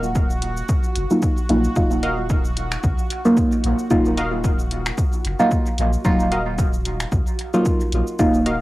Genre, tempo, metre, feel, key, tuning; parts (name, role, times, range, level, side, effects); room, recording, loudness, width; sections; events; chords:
dub techno; 112 BPM; 4/4; swing 56% on 16ths; Eb minor; A4 = 440 Hz
filtered dub chord stab; riff; 0.0-8.6 s; Gb4 to F5; -28 LUFS; equal; chorus, sidechain pumping, cassette tape, dub echo
pure sine sub bass; bass; 0.0-8.6 s; Eb1 to Db2; -25 LUFS; equal; transformer saturation, sidechain pumping
deep house drum kit; drums; 0.0-8.6 s; finger snaps, hi-hat, shaker; -30 LUFS; equal; overdrive, cassette tape, dub echo
bubbling stepped-filter texture; texture; 0.0-8.6 s; Gb4; -33 LUFS; right 2 dB; chorus, built-in reverb, sidechain pumping, cassette tape
electronic kick drum; drums; 0.2-8.3 s; -21 LUFS; equal; overdrive, cassette tape
deep mellow chord stab; stabs; 1.1-8.4 s; Gb3 to F4; -20 LUFS; equal; chorus, phaser, sidechain pumping, cassette tape, dub echo
moderate small room reverb, RT60 0.5 s; home recording on cassette; -17 LUFS; side -18 dB against mid
0.0-8.6 A section
0.0 Ebmadd9